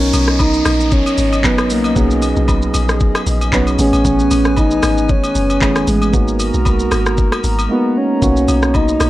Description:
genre	amapiano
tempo	115 BPM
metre	4/4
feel	swing 55% on 16ths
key	B major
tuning	A4 = 440 Hz
part	breathy flute-like synth lead	melody	0.0-9.1 s	G#3 to D#4	-17 LUFS	equal	chorus, analog delay
part	mellow tine electric piano	accompaniment	0.0-9.1 s	E3 to C#5	-20 LUFS	right 3 dB	none
part	hollow soft pad	sustained chords	0.0-9.1 s	C#4 to A#5	-25 LUFS	equal	chorus
part	deep log drum bass	bass	0.0-9.1 s	F#1 to B1	-18 LUFS	equal	none
part	smooth R&B drum kit	drums	0.0-9.1 s	handclaps, hi-hat, kick drum, rim click, shaker	-18 LUFS	equal	none
part	downlifter	sound effects	0.0-4.0 s	none	-27 LUFS	equal	none
part	agogo bells and woodblock	percussion	0.1-9.1 s	none	-26 LUFS	left 2 dB	none
room	little or no reverb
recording	dry, gritty hardware recording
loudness	-12 LUFS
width	side -16 dB against mid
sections	0.0-9.1 A section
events	silent gap 7.7-8.2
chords	0.0 Bmaj9; 3.8 Amaj9; 6.1 G#m9; 8.2 Bmaj9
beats	0.40 0.92 1.44 | 1.96 2.48 3.01 3.53 | 4.05 4.57 5.09 5.62 | 6.14 6.66 7.18 7.70 | 8.22 8.74

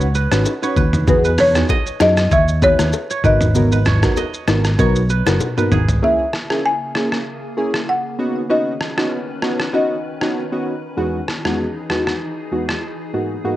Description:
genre	afrobeats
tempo	97 BPM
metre	4/4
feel	swing 55% on 16ths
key	unclear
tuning	A4 = 441 Hz
part	folk marimba with medium mallets	melody	0.0-10.6 s	B4 to G#5	-18 LUFS	left 1 dB	cassette tape, tape echo
part	warm analog keys	accompaniment	0.0-13.6 s	E2 to B4	-21 LUFS	equal	chorus, cassette tape
part	kora	riff	0.0-7.1 s	G#4 to D#5	-25 LUFS	right 8 dB	cassette tape, tape echo
part	fingered electric bass	bass	0.0-6.0 s	F#1 to F#2	-17 LUFS	equal	none
part	trip hop sampler-style drum kit	drums	0.0-12.8 s	hi-hat, kick drum, rim click, shaker, toms	-21 LUFS	equal	cassette tape
part	bongos and congas	percussion	0.3-5.9 s	none	-25 LUFS	left 7 dB	none
part	glassy FM pad	sustained chords	6.4-13.6 s	C#3 to B4	-29 LUFS	left 1 dB	ensemble chorus, built-in reverb, cassette tape
room	light reverb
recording	home recording on cassette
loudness	-15 LUFS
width	side -14 dB against mid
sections	0.0-6.0 A section; 6.0-13.6 B section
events	drum fill 5.4-6.0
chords	0.0 Badd9; 1.1 Emaj7; 3.2 G#m7; 6.0 A#m7b5; 8.2 Badd9; 11.0 Emaj7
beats	0.46 | 1.07 1.69 2.31 2.93 | 3.55 4.17 4.79 5.41 | 6.02 6.64 7.26 7.88 | 8.50 9.12 9.73 10.35 | 10.97 11.59 12.21 12.83 | 13.45

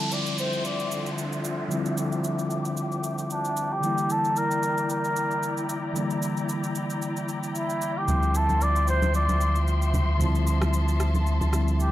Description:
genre	amapiano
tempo	113 BPM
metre	4/4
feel	swing 55% on 16ths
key	D minor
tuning	A4 = 439 Hz
part	trumpet with cup mute	melody	0.0-11.9 s	D4 to D5	-27 LUFS	equal	low-pass filter, analog delay
part	mellow tine electric piano	accompaniment	0.0-11.9 s	D3 to E4	-29 LUFS	equal	medium stereo tremolo, low-pass filter
part	rich studio string section	sustained chords	0.0-11.9 s	D3 to D6	-32 LUFS	left 2 dB	low-pass filter
part	electronic shaker and rim click	drums	0.0-11.9 s	none	-37 LUFS	right 3 dB	none
part	downlifter	sound effects	0.0-3.8 s	none	-35 LUFS	equal	none
part	warm sub bass	bass	8.1-11.9 s	D2	-23 LUFS	equal	none
part	congas	percussion	8.1-11.5 s	none	-32 LUFS	equal	none
room	digital ambience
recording	dry, gritty hardware recording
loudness	-23 LUFS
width	side -14 dB against mid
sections	0.0-11.9 A section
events	filter sweep 0.0-11.9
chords	0.0 Dm11; 3.8 Em7b5; 8.1 Dm11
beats	0.12 0.65 1.18 | 1.71 2.24 2.77 3.30 | 3.83 4.36 4.89 5.43 | 5.96 6.49 7.02 7.55 | 8.08 8.61 9.14 9.67 | 10.21 10.73 11.27 11.80

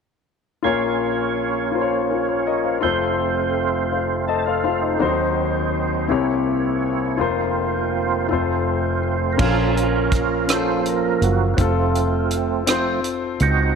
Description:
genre	slow gospel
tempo	55 BPM (dotted quarters)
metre	6/8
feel	straight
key	Bb harmonic minor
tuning	A4 = 440 Hz
part	clear concert grand piano	accompaniment	0.6-13.8 s	F1 to A5	-22 LUFS	left 8 dB	none
part	percussive tonewheel organ	sustained chords	0.6-13.8 s	Eb2 to A5	-22 LUFS	right 9 dB	slow rotary speaker, overdrive, chorus vibrato
part	fingered electric bass	bass	9.4-13.7 s	F1 to Db2	-22 LUFS	right 1 dB	none
part	tight funk drum kit	drums	9.4-13.6 s	crash cymbal, hi-hat, kick drum, rim click	-24 LUFS	right 2 dB	none
room	moderate plate reverb, RT60 1.9 s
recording	1960s-style stereo with parts hard left and right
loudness	-18 LUFS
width	side -6 dB against mid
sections	0.6-9.4 A section; 9.4-13.8 B section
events	grand piano fill 3.9-5.0; tonewheel organ solo 9.4-13.8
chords	0.6 Bbm; 2.8 F; 5.0 Cdim/Eb; 6.1 C7b9; 7.2 Fsus4; 8.3 F; 9.4 Bbm; 11.6 F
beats	| 0.62 1.72 | 2.81 3.91 | 5.00 6.10 | 7.20 8.29 | 9.39 10.48 | 11.58 12.67

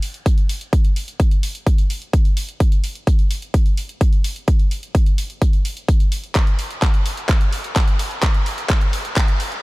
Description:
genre	EDM, festival progressive house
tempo	128 BPM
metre	4/4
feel	straight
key	none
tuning	none
part	pop drum kit	drums	0.0-9.6 s	handclaps, hi-hat	-26 LUFS	equal	none
part	electronic kick drum	drums	0.3-9.3 s	none	-16 LUFS	equal	none
room	little or no reverb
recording	none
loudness	-16 LUFS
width	side -22 dB against mid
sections	0.0-9.6 A section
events	build-up 0.0-9.6; drum fill 6.4-9.6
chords	none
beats	0.26 | 0.73 1.20 1.67 2.13 | 2.60 3.07 3.54 4.01 | 4.48 4.95 5.42 5.88 | 6.35 6.82 7.29 7.76 | 8.23 8.70 9.17

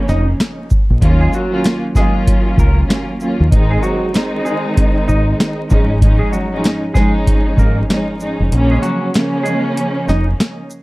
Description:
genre	hip hop, boom-bap hip-hop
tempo	96 BPM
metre	4/4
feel	swing 61% on 16ths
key	unclear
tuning	A4 = 440 Hz
part	warm studio string section	accompaniment	0.0-10.6 s	Eb2 to F4	-18 LUFS	equal	cassette tape, high-pass filter, low-pass filter
part	clean electric guitar	melody	0.1-10.3 s	Gb3 to Eb5	-23 LUFS	equal	high-pass filter, low-pass filter, tape echo
part	deep dub fingered electric bass	bass	0.1-10.3 s	F1 to Eb2	-14 LUFS	equal	none
part	booming analog drum machine	drums	0.1-10.8 s	hi-hat, kick drum, shaker, snare drum	-15 LUFS	equal	none
room	light reverb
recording	dark, warm production, vinyl crackle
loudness	-12 LUFS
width	side -21 dB against mid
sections	0.0-10.8 A section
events	kick muted 8.5-10.8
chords	0.0 Dbadd9; 1.0 Ebm7; 3.5 Ab; 5.7 Dbadd9/Ab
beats	0.39 | 1.02 1.64 2.27 2.89 | 3.52 4.14 4.77 5.39 | 6.02 6.64 7.27 7.89 | 8.52 9.14 9.77 10.39

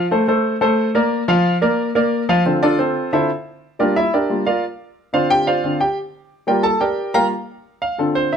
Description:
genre	latin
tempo	179 BPM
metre	4/4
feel	straight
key	D minor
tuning	A4 = 441 Hz
part	warm concert grand piano	solo	0.0-8.4 s	D3 to Bb5	-16 LUFS	equal	none
room	light reverb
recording	close, detailed microphones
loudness	-16 LUFS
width	side -7 dB against mid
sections	0.0-2.5 A section; 2.5-8.4 B section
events	grand piano solo 2.5-8.4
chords	0.0 D7(no3); 1.1 Bb/F; 2.5 Dm9; 3.8 Gm7; 5.1 Dm7; 6.5 Gm7; 7.8 Dm7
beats	0.11 0.44 0.78 | 1.11 1.45 1.78 2.12 | 2.45 2.79 3.12 3.46 | 3.79 4.13 4.46 4.80 | 5.13 5.47 5.80 6.14 | 6.47 6.81 7.14 7.48 | 7.82 8.15

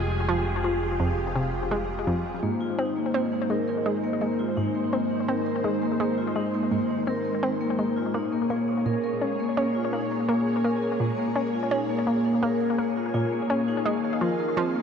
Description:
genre	ambient, sequencer-driven space music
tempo	84 BPM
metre	4/4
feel	straight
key	unclear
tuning	A4 = 440 Hz
part	string machine, full ensemble	sustained chords	0.0-14.8 s	Ab3 to F5	-28 LUFS	equal	ensemble chorus
part	analog pluck	riff	0.0-14.7 s	F2 to Db4	-29 LUFS	equal	chorus, ping-pong delay
part	fat analog bass	bass	0.0-2.4 s	F1	-31 LUFS	right 1 dB	none
part	vibraphone with medium mallets	arpeggios	2.4-14.8 s	Ab3 to Bb4	-27 LUFS	left 2 dB	auto-pan, ping-pong delay
room	wet huge ambient reverb, RT60 8.7 s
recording	dark, warm production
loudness	-23 LUFS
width	side -7 dB against mid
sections	0.0-2.4 A section; 2.4-14.8 B section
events	none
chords	0.0 Fmadd9; 2.4 Ab; 8.1 Bbm7; 13.9 Fm7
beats	0.28 1.00 1.71 | 2.43 3.14 3.86 4.57 | 5.28 6.00 6.71 7.43 | 8.14 8.86 9.57 10.28 | 11.00 11.71 12.43 13.14 | 13.86 14.57

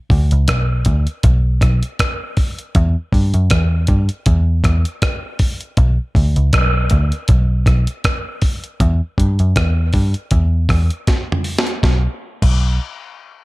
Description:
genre	dub reggae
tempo	79 BPM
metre	4/4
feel	swing 56% on 16ths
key	unclear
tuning	A4 = 440 Hz
part	vintage muted picked electric bass	bass	0.1-12.8 s	B1 to G2	-14 LUFS	equal	none
part	breakbeat sampler-style drum kit	drums	0.1-12.6 s	crash cymbal, hi-hat, kick drum, rim click, snare drum, toms	-17 LUFS	equal	none
room	digital ambience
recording	none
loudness	-14 LUFS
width	side -21 dB against mid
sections	0.0-11.8 A section; 11.8-13.4 B section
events	drum fill 11.1-11.8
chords	none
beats	0.48 1.24 1.99 | 2.75 3.51 4.26 5.02 | 5.78 6.53 7.29 8.04 | 8.80 9.56 10.32 11.07 | 11.83 12.59

